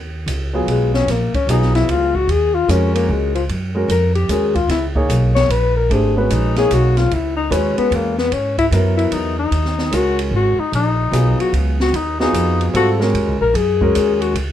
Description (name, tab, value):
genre	modal jazz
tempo	149 BPM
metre	3/4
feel	swing 65% on 8ths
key	Eb minor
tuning	A4 = 440 Hz
part	upright bass	bass	0.0-14.5 s	Ab1 to Ab2	-18 LUFS	right 1 dB	none
part	open jazz drum kit	drums	0.3-14.5 s	hi-hat, kick drum, ride cymbal, snare drum	-26 LUFS	right 1 dB	none
part	warm grand piano	accompaniment	0.5-14.3 s	Gb3 to Db5	-21 LUFS	right 1 dB	none
part	breathy tenor saxophone	second line	0.7-14.3 s	F3 to Db5	-18 LUFS	left 5 dB	none
room	light reverb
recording	dark, warm production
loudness	-14 LUFS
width	side -11 dB against mid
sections	0.0-14.5 A section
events	tenor saxophone solo 0.0-14.5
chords	0.0 Ebm11; 4.7 Dbm11; 9.5 Ebm11